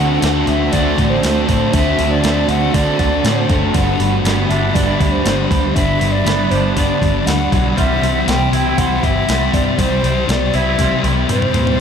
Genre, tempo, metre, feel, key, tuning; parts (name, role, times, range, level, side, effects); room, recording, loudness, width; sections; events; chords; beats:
rock, shoegaze and dream pop; 119 BPM; 4/4; straight; A4 = 440 Hz
mellow hollow concert flute; melody; 0.0-11.8 s; C5 to G5; -20 LUFS; equal; tape echo
crunchy overdriven guitar; riff; 0.0-11.8 s; C3 to C5; -21 LUFS; right 7 dB; reverse reverb
thick fuzz guitar; riff; 0.0-11.8 s; G2 to D4; -18 LUFS; left 7 dB; distortion, wide subtle chorus
vintage muted picked electric bass; bass; 0.0-11.7 s; F#1 to D3; -20 LUFS; equal
crisp 8-bit digital drum machine; drums; 0.2-11.8 s; hi-hat, kick drum, snare drum, toms; -21 LUFS; equal; overdrive
twangy electric guitar; arpeggios; 4.2-11.8 s; F#3 to E4; -25 LUFS; right 7 dB; ensemble chorus, tape echo
wet cathedral reverb, RT60 4.8 s; dreamy mix soaked in reverb; -13 LUFS; side -7 dB against mid
0.0-11.8 A section
drum fill 10.8-11.8
0.0 D7; 3.7 Gmaj7; 7.8 C
0.22 0.72 1.23 | 1.73 2.24 2.74 3.24 | 3.75 4.25 4.75 5.25 | 5.76 6.26 6.76 7.27 | 7.77 8.27 8.78 9.28 | 9.78 10.28 10.79 11.29 | 11.79